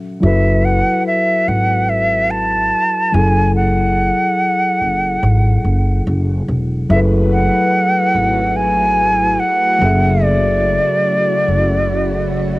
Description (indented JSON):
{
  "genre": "lo-fi hip hop",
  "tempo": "72 BPM",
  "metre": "4/4",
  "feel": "swing 58% on 16ths",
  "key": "F# minor",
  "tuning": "A4 = 442 Hz",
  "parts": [
    { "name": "mellow tine electric piano", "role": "accompaniment", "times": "0.0-12.6 s", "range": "C#3 to E5", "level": "-19 LUFS", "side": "left 1 dB", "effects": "medium stereo tremolo, cassette tape" },
    { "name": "jazz flute", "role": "melody", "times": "0.2-12.6 s", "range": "D5 to A5", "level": "-16 LUFS", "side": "right 1 dB", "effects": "cassette tape" },
    { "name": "upright bass", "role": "bass", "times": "0.2-12.6 s", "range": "E1 to G#1", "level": "-17 LUFS", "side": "equal", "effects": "none" },
    { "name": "string machine, violins", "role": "sustained chords", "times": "6.9-12.6 s", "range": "C#3 to B4", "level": "-23 LUFS", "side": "equal", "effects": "ensemble chorus, cassette tape" }
  ],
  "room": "light reverb",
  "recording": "home recording on cassette",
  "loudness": "-12 LUFS",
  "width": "side -20 dB against mid",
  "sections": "0.0-6.9 A section; 6.9-12.6 A section",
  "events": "none",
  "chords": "0.2 F#m11; 3.1 F#m9; 6.9 F#m11; 9.8 Dmaj9#11/F#"
}